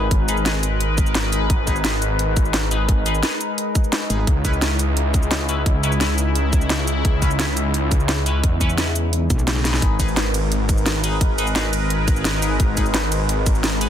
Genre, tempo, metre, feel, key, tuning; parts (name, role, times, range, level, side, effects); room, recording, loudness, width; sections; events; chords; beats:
dark technical drum and bass; 173 BPM; 4/4; straight; G# minor; A4 = 441 Hz
sweeping resonant pad; sustained chords; 0.0-13.9 s; C#3 to B4; -25 LUFS; left 1 dB; chorus, sidechain pumping
band-passed chord stab; stabs; 0.0-13.9 s; C#4 to B4; -28 LUFS; left 3 dB; phaser, tape echo
wide detuned saw bass; bass; 0.0-13.9 s; G#1 to E2; -21 LUFS; equal; chorus
drum and bass drum kit; drums; 0.1-13.9 s; hi-hat, ride cymbal, shaker, snare drum; -23 LUFS; equal; overdrive
electronic kick drum; drums; 0.1-13.5 s; -18 LUFS; equal; overdrive
metallic wobble bass; bass; 4.1-4.3, 9.3-9.8 s; G#1 to B1; -21 LUFS; equal; chorus
digital ambience; dense, heavily limited modern master; -17 LUFS; side -10 dB against mid
0.0-13.9 A section
drum fill 9.6
0.0 G#m; 4.3 C#m7; 9.8 G#m
| 0.11 0.46 0.81 1.15 | 1.50 1.85 2.19 2.54 | 2.89 3.23 3.58 3.93 | 4.27 4.62 4.97 5.31 | 5.66 6.01 6.36 6.70 | 7.05 7.39 7.74 8.09 | 8.44 8.78 9.13 9.48 | 9.82 10.17 10.52 10.86 | 11.21 11.56 11.90 12.25 | 12.60 12.94 13.29 13.64